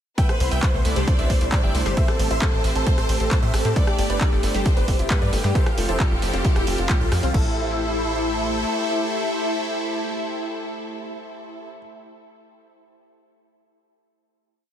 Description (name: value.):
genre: uplifting trance.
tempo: 134 BPM.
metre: 4/4.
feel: straight.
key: A minor.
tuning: A4 = 440 Hz.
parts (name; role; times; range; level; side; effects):
big supersaw lead; melody; 0.2-11.7 s; A3 to G5; -27 LUFS; equal; phaser, sidechain pumping, diffuse ambient delay.
dark grand piano; second line; 0.2-11.8 s; E4 to G5; -36 LUFS; left 1 dB; none.
rich symphonic violin section; second line; 0.2-11.7 s; G3 to D5; -31 LUFS; equal; diffuse ambient delay.
lush unison pad; sustained chords; 0.2-11.7 s; C3 to C5; -30 LUFS; right 1 dB; chorus, sidechain pumping.
analog pluck; arpeggios; 0.2-7.6 s; A2 to E4; -32 LUFS; left 2 dB; chorus, sidechain pumping, diffuse ambient delay.
electronic kick drum; drums; 0.2-7.4 s; none; -21 LUFS; equal; none.
punchy analog drum machine; drums; 0.2-7.4 s; crash cymbal, handclaps, hi-hat, rim click; -30 LUFS; right 1 dB; none.
tight sequencer bass; bass; 0.4-8.6 s; F1 to A2; -24 LUFS; equal; sidechain pumping.
room: light reverb, digital ambience.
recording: none.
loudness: -19 LUFS.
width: side -10 dB against mid.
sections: 0.2-7.3 drop; 7.3-10.9 final chord.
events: drop 0.2-7.3.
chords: 0.2 Cmaj7; 2.0 Am7; 3.8 Gsus2; 5.6 Fadd9; 7.3 Am7.